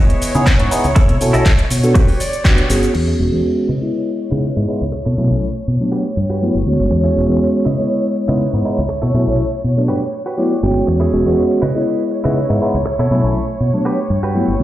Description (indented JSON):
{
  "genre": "filtered disco house",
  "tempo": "121 BPM",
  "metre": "4/4",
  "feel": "straight",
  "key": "E major",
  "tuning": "A4 = 440 Hz",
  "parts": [
    { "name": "bright tine electric piano", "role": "accompaniment", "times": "0.0-14.6 s", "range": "F#3 to D#5", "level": "-18 LUFS", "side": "equal", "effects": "phaser, sidechain pumping, low-pass filter" },
    { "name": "dark studio violin section", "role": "sustained chords", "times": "0.0-14.6 s", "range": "C#5", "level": "-24 LUFS", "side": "right 1 dB", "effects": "vintage 12-bit sampler grit, sidechain pumping, low-pass filter" },
    { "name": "direct-recorded clean electric guitar", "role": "riff", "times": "0.0-14.5 s", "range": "E4 to G5", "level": "-26 LUFS", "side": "right 2 dB", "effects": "sidechain pumping, low-pass filter" },
    { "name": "house drum kit", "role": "drums", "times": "0.1-3.0 s", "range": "cabasa, crash cymbal, handclaps, hi-hat", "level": "-23 LUFS", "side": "equal", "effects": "sidechain pumping on hats, studio reverb, sidechain pumping on perc, sidechain pumping on cymbals" },
    { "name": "fingered electric bass", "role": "bass", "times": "0.3-14.6 s", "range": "E1 to C#3", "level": "-17 LUFS", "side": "equal", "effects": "sidechain pumping, low-pass filter" },
    { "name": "electronic kick drum", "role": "drums", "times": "0.5-2.6 s", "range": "none", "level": "-13 LUFS", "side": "equal", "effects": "studio reverb" }
  ],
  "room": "light reverb",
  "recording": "played on a big sound system in a bare room, stone room reverb",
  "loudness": "-14 LUFS",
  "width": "side -14 dB against mid",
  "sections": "0.0-2.9 A section; 2.9-14.6 B section",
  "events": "clean electric guitar fill 2.0-2.9, 10.1-10.9; band accent 2.5",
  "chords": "0.0 C#m9; 1.0 B9sus4; 2.0 Gmaj7; 2.9 E6; 3.7 C#m9; 4.9 B9sus4; 5.9 Gmaj7; 6.9 E6; 7.7 C#m9; 8.9 B9sus4; 9.9 Gmaj7; 10.9 E6; 11.6 C#m9; 12.9 B9sus4; 13.9 Gmaj7"
}